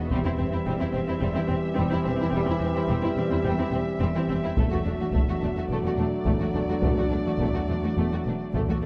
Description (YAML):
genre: cinematic, epic orchestral film score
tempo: 107 BPM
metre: 4/4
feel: straight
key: unclear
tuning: A4 = 440 Hz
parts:
  - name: warm chamber violin section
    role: melody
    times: 0.0-8.9 s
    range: D5 to E5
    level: -40 LUFS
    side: equal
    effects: none
  - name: warm symphonic violin section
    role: second line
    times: 0.0-8.9 s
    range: G3 to F#4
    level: -36 LUFS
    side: equal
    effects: none
  - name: warm symphonic viola section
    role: accompaniment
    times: 0.0-8.9 s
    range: A3 to C4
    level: -35 LUFS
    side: equal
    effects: none
  - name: rich symphonic cello section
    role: bass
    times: 0.0-8.9 s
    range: E2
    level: -33 LUFS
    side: equal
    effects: none
  - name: warm symphonic double bass section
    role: bass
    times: 0.0-8.9 s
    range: E1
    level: -34 LUFS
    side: equal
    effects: none
  - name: mellow French horn section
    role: sustained chords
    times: 0.1-8.8 s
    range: C4 to G4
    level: -34 LUFS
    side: equal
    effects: none
  - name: warm trombone section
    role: sustained chords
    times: 0.1-8.8 s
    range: E3 to A3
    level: -34 LUFS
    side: equal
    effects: none
  - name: taiko ensemble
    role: drums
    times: 0.1-1.2, 4.6-8.9 s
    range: none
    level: -30 LUFS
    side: equal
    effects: none
room: moderate scoring stage reverb, RT60 1.4 s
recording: dark, warm production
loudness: -26 LUFS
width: mono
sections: 0.0-8.9 A section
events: build-up 0.0-8.9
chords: 0.1 C/E; 4.6 D/E